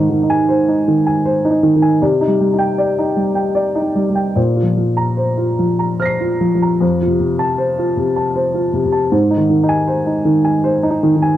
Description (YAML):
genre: neoclassical minimalist piano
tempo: 78 BPM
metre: 3/4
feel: rubato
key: unclear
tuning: A4 = 440 Hz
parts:
  - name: warm baby grand piano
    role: solo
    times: 0.0-11.4 s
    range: F2 to C7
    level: -13 LUFS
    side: equal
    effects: none
room: moderate booth ambience, RT60 0.2 s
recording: dry, close 1970s-style studio recording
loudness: -13 LUFS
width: side -12 dB against mid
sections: 0.0-11.4 A section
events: none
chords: 0.0 Ab; 2.0 Cmadd9; 4.4 Bbsus2; 6.8 F; 9.1 Ab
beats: 0.49 1.25 | 2.02 2.79 3.56 | 4.36 5.18 6.00 | 6.82 7.59 8.36 | 9.12 9.88 10.65